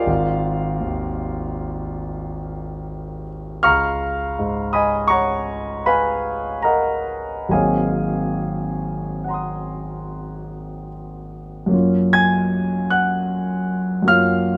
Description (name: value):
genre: classical, impressionist solo piano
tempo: 67-87 BPM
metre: 5/4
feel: rubato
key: F# major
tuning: A4 = 439 Hz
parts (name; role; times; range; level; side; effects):
- warm grand piano; solo; 0.0-14.6 s; G#1 to G#6; -21 LUFS; equal; none
room: light reverb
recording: none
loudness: -21 LUFS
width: mono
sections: 0.0-11.7 A section; 11.7-14.6 B section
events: none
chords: 0.1 G#5; 3.6 C#9; 7.5 G#9; 11.7 F#maj7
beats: | 0.08 0.80 1.52 2.23 2.92 | 3.63 4.37 5.11 5.85 6.63 | 7.50 8.37 9.22 10.06 10.91 | 11.73 12.52 13.29 14.08